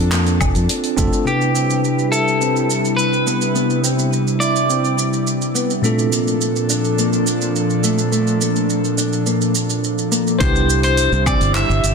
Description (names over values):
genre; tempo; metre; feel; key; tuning
sunset chillout; 105 BPM; 4/4; straight; C major; A4 = 441 Hz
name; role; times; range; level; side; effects
electric guitar at the edge of break-up; melody; 0.0-5.5, 10.4-11.9 s; G4 to E5; -20 LUFS; equal; tape echo
bell-like tine electric piano; accompaniment; 0.0-11.9 s; Bb2 to C5; -22 LUFS; moving between left 3 dB and right 3 dB; auto-pan, low-pass filter, tape echo
airy breathy pad; sustained chords; 0.0-11.9 s; Bb2 to A5; -21 LUFS; right 1 dB; chorus
mellow electric guitar; arpeggios; 0.0-11.7 s; A3 to D5; -23 LUFS; left 2 dB; low-pass filter, tape echo
fingered electric bass; bass; 0.0-1.1, 10.4-11.9 s; F1 to F2; -18 LUFS; equal; none
deep house drum kit; drums; 0.1-11.9 s; handclaps, hi-hat, shaker, woodblock; -24 LUFS; right 3 dB; none
electronic kick drum; drums; 0.4-1.1, 10.4-11.4 s; none; -21 LUFS; equal; none
room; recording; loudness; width
moderate lush hall reverb, RT60 2.2 s; dense, heavily limited modern master; -15 LUFS; side -5 dB against mid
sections
0.0-1.3 A section; 1.3-10.4 B section; 10.4-11.9 A section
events
filter sweep on tine electric piano 1.3-10.4; filter sweep on clean electric guitar 1.3-10.4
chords
0.0 Bbmaj7; 1.3 Cmaj7; 5.8 Bbmaj7; 10.4 Cmaj7